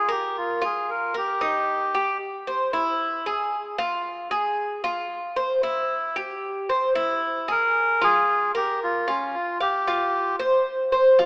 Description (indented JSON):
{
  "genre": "latin",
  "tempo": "114 BPM",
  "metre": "4/4",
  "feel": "straight",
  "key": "F minor",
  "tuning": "A4 = 440 Hz",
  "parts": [
    { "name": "melodica", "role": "melody", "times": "0.0-2.2, 7.5-10.4 s", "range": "Db4 to Bb4", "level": "-22 LUFS", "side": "equal", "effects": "none" },
    { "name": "Cuban tres", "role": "arpeggios", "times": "0.0-11.3 s", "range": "Eb4 to F5", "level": "-23 LUFS", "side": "equal", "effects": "none" }
  ],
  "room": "moderate lush hall reverb, RT60 2.4 s",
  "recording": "rough home demo mix, AM radio sound",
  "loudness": "-21 LUFS",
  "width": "side -27 dB against mid",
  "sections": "0.0-11.3 A section",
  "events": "none",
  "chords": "0.0 Bb5; 1.4 Eb; 2.5 C; 3.5 Fm; 5.6 C; 7.8 Fm; 8.8 Db6; 9.9 Csus4",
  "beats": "0.35 0.88 | 1.41 1.94 2.47 3.00 | 3.52 4.05 4.58 5.11 | 5.64 6.17 6.69 7.22 | 7.75 8.28 8.81 9.34 | 9.86 10.39 10.92"
}